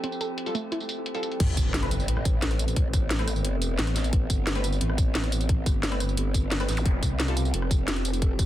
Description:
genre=dark technical drum and bass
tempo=176 BPM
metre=4/4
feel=straight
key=A minor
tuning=A4 = 439 Hz
part: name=metallic inharmonic drone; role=sustained chords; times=0.0-8.5 s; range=F3 to A4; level=-34 LUFS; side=right 3 dB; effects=chorus, built-in reverb, sidechain pumping
part: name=warbly dusty pluck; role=arpeggios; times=0.0-0.8 s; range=A3 to A4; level=-35 LUFS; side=right 2 dB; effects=chorus, cassette tape, sidechain pumping, dub echo
part: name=drum and bass drum kit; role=drums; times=0.0-8.5 s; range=crash cymbal, hi-hat, rim click, snare drum, tambourine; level=-30 LUFS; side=equal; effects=low-pass filter on hats, low-pass filter on perc, low-pass filter on cymbals, low-pass filter on snare, low-pass filter on room
part: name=orchestra-hit-like synth stab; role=stabs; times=0.5-7.4 s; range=G3 to B4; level=-36 LUFS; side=left 1 dB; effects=built-in reverb, dub echo
part: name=growl bass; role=bass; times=1.4-8.5 s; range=F1 to C2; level=-27 LUFS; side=equal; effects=chorus, overdrive, sidechain pumping
part: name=electronic kick drum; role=drums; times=1.4-8.5 s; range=none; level=-24 LUFS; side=equal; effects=none
part: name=impact and zap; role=sound effects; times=1.4-2.8, 6.8-6.9 s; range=none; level=-32 LUFS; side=equal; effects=none
room=little or no reverb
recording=dense, heavily limited modern master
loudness=-24 LUFS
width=side -13 dB against mid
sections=0.0-1.4 A section; 1.4-8.5 B section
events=filter sweep on synth stab 0.0-1.4; drop 1.4-8.5; impact 1.4-2.8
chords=0.0 Fadd9; 1.4 Amadd9; 6.9 Fadd9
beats=| 0.04 0.38 0.72 1.06 | 1.40 1.74 2.08 2.42 | 2.77 3.11 3.45 3.79 | 4.13 4.47 4.81 5.15 | 5.49 5.83 6.17 6.51 | 6.86 7.20 7.54 7.88 | 8.22

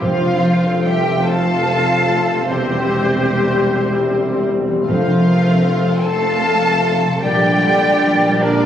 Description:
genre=classical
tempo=51 BPM (dotted quarters)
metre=6/8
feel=rubato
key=F major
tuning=A4 = 441 Hz
part: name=rich studio violin section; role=melody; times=0.0-8.7 s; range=C5 to A5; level=-23 LUFS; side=equal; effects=none
part: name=concert flute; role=second line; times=0.0-8.7 s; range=G4 to F5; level=-20 LUFS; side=left 1 dB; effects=none
part: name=warm studio violin section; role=second line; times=0.0-8.7 s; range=C4 to A4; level=-24 LUFS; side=equal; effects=none
part: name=warm studio viola section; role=accompaniment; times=0.0-8.7 s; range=F3 to D4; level=-26 LUFS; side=right 1 dB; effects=none
part: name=warm trombone section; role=sustained chords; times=0.0-8.7 s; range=C3 to A3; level=-24 LUFS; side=right 2 dB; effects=none
part: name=concert harp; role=arpeggios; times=0.0-8.7 s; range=E2 to A5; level=-24 LUFS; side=left 5 dB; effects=none
part: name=rich studio cello section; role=bass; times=0.0-8.7 s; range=C3 to A3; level=-23 LUFS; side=right 1 dB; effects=none
part: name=rich studio double bass section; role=bass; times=0.0-8.7 s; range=E1 to Bb1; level=-24 LUFS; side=right 2 dB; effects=none
part: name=warm tuba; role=bass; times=0.0-8.7 s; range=E1 to Bb1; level=-26 LUFS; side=right 3 dB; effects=none
part: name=timpani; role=percussion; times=0.0-6.0 s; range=F2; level=-25 LUFS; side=equal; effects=none
part: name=warm French horn section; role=sustained chords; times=1.3-8.7 s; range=F4 to C5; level=-24 LUFS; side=left 5 dB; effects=none
room=wet recital hall reverb, RT60 1.4 s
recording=recorded on a phone in the room, studio ambience, compression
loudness=-13 LUFS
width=side -10 dB against mid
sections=0.0-8.7 A section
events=none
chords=0.0 F; 2.5 C/E; 4.9 F; 7.2 Gm/Bb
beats=| 0.01 1.27 | 2.50 3.70 | 4.88 6.05 | 7.23 8.41

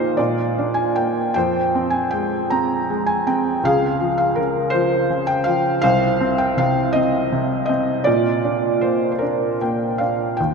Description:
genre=classical, lyrical solo piano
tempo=53 BPM (dotted quarters)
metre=6/8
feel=uneven beats, rubato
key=unclear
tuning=A4 = 440 Hz
part: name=felt-muted upright piano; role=solo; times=0.0-10.5 s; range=C2 to Bb5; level=-17 LUFS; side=equal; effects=none
room=wet cathedral reverb, RT60 5.7 s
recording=in a vast, echoing space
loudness=-17 LUFS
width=side -5 dB against mid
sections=0.0-10.4 A section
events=felt piano fill 9.2-10.4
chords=0.2 Bb; 1.4 Fm; 3.6 Db; 5.8 N.C.; 8.1 Bb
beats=0.19 | 1.35 2.50 | 3.63 4.74 | 5.84 6.96 | 8.07 9.22 | 10.39

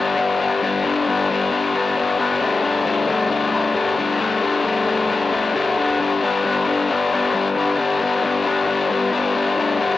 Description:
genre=rock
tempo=134 BPM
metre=4/4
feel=straight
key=G major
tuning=A4 = 440 Hz
part: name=raw garage guitar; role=solo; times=0.0-10.0 s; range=G2 to D4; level=-17 LUFS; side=left 3 dB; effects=overdrive, spring reverb, cassette tape
room=light reverb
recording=home recording on cassette, nothing above 7.9 kHz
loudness=-17 LUFS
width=side -13 dB against mid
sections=0.0-10.0 A section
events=none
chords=0.0 G; 2.4 Dsus4; 6.0 G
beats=0.18 | 0.63 1.07 1.52 1.97 | 2.42 2.87 3.31 3.76 | 4.21 4.66 5.10 5.55 | 6.00 6.45 6.90 7.34 | 7.79 8.24 8.69 9.14 | 9.59

